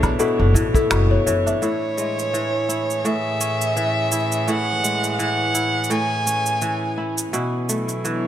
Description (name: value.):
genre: folktronica.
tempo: 84 BPM.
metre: 4/4.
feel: swing 56% on 16ths.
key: A major.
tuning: A4 = 438 Hz.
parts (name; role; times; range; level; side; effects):
small celesta; second line; 0.0-1.6 s; E4 to E5; -23 LUFS; left 5 dB; ping-pong delay.
warm string quartet; sustained chords; 0.0-8.3 s; A2 to C#5; -27 LUFS; right 2 dB; low-pass filter.
kora; arpeggios; 0.0-8.3 s; A2 to E4; -25 LUFS; equal; low-pass filter, ping-pong delay.
upright bass; bass; 0.0-1.5 s; F#1 to A1; -19 LUFS; equal; none.
cabasa, woodblock and finger snaps; drums; 0.0-8.2 s; none; -26 LUFS; right 2 dB; none.
kick drum; drums; 0.0-0.9 s; none; -21 LUFS; equal; none.
clear violin; melody; 1.6-7.0 s; C#5 to G#5; -23 LUFS; equal; vintage 12-bit sampler grit, ping-pong delay.
room: light reverb.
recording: none.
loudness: -18 LUFS.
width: side -11 dB against mid.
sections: 0.0-1.6 A section; 1.6-8.3 B section.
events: filter sweep on string quartet 1.6-8.3.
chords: 0.0 Bm11; 1.6 Amaj7; 7.3 Bm11.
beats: 0.19 0.91 | 1.62 2.34 3.05 3.76 | 4.48 5.19 5.91 6.62 | 7.34 8.05.